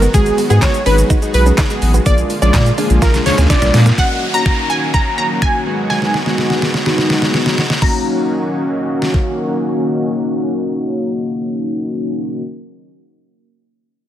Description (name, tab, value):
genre	dance-pop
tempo	125 BPM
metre	4/4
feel	straight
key	Eb minor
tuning	A4 = 438 Hz
part	chorused polysynth	accompaniment	0.0-12.4 s	Ab3 to Bb4	-19 LUFS	left 1 dB	sidechain pumping, low-pass filter
part	supersaw pad	sustained chords	0.0-12.4 s	D3 to F#4	-24 LUFS	right 1 dB	sidechain pumping, low-pass filter
part	direct-recorded clean electric guitar	riff	0.0-3.9 s	Ab3 to F4	-24 LUFS	right 6 dB	lush chorus
part	saturated sub bass	bass	0.0-3.9 s	Ab1 to Bb2	-13 LUFS	equal	sidechain pumping
part	pop drum kit	drums	0.0-9.3 s	crash cymbal, finger snaps, handclaps, hi-hat, kick drum, shaker, snare drum	-16 LUFS	equal	overdrive
part	plucky unison lead	melody	0.1-3.8 s	Ab4 to D5	-18 LUFS	right 1 dB	sidechain pumping, tape echo
part	analog pluck	melody	4.0-12.6 s	Gb5 to Bb5	-19 LUFS	equal	chorus, low-pass filter, tape echo
part	downlifter	sound effects	4.0-7.8 s	none	-26 LUFS	equal	none
room	light reverb, digital ambience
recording	none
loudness	-13 LUFS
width	side -11 dB against mid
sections	0.0-4.0 A section; 4.0-7.8 B section; 7.8-11.7 C section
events	drop 0.0-4.0; drum fill 3.0-4.0, 5.9-7.8; filter sweep 4.0-7.8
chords	0.1 Abm7; 2.1 Bb7; 4.0 Ebm7; 5.7 B6; 7.8 Ebm7